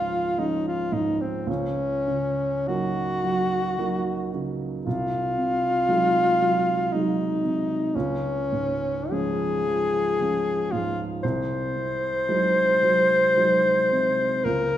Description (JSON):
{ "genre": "classical, romantic duo for alto saxophone and grand piano", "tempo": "48-59 BPM", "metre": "3/4", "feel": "rubato", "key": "unclear", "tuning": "A4 = 440 Hz", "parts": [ { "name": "mellow alto saxophone", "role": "melody", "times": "0.0-14.8 s", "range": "C4 to C5", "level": "-23 LUFS", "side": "left 1 dB", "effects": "none" }, { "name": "dark baby grand piano", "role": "accompaniment", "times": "0.0-14.8 s", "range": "C2 to Eb4", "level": "-27 LUFS", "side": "right 3 dB", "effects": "none" } ], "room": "wet recital hall reverb, RT60 1.6 s", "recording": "minimal, uncompressed stereo recording", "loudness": "-21 LUFS", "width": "side -12 dB against mid", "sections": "0.0-14.8 A section", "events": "none", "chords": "0.0 Db; 1.5 Ebm7/Db; 4.9 Ab7/C; 7.9 Db; 11.2 Ab7/C" }